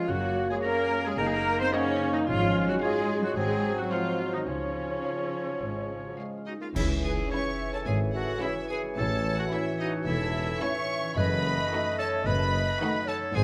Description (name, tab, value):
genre	cinematic, playful, whimsical film cue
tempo	109 BPM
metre	4/4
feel	straight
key	Db major, C# minor from 6.8 s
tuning	A4 = 441 Hz
part	marimba with medium mallets	melody	0.0-13.4 s	Db4 to C#5	-38 LUFS	equal	none
part	bright oboe	second line	0.0-13.4 s	Eb4 to C6	-37 LUFS	equal	none
part	clear clarinet	second line	0.0-13.4 s	Ab3 to D#5	-40 LUFS	equal	none
part	mellow flute section	second line	0.0-13.4 s	Gb4 to E5	-39 LUFS	equal	none
part	rich chamber viola section	accompaniment	0.0-13.2 s	D#3 to C5	-34 LUFS	equal	none
part	warm bassoon	accompaniment	0.0-13.4 s	E3 to Bb3	-40 LUFS	equal	none
part	dark French horn section	sustained chords	0.0-13.0 s	E3 to D#4	-39 LUFS	equal	none
part	concert harp	arpeggios	0.0-13.4 s	Gb2 to A5	-41 LUFS	equal	none
part	clear chamber double bass section	bass	0.1-13.4 s	E1 to Db2	-35 LUFS	equal	none
part	rich symphonic cello section	bass	0.1-13.4 s	E2 to C4	-37 LUFS	equal	none
part	rich studio violin section	melody	0.6-13.4 s	Eb5 to C#6	-39 LUFS	equal	none
part	rich studio violin section	second line	0.6-13.2 s	C#4 to Gb5	-41 LUFS	equal	none
part	mellow tuba	bass	6.8-13.4 s	E1 to C#2	-38 LUFS	equal	none
part	clash cymbals and concert bass drum	percussion	6.8-7.8 s	none	-38 LUFS	equal	none
room	moderate recital hall reverb, RT60 1.6 s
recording	close, detailed microphones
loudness	-28 LUFS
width	mono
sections	0.0-6.8 A section; 6.8-13.4 B section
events	band accent 6.8-7.3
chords	0.1 Gb; 1.2 Ebm/Gb; 2.3 Db/Ab; 3.4 Ab7; 4.5 Db; 6.8 C#m; 9.0 A; 11.2 D#dim/F#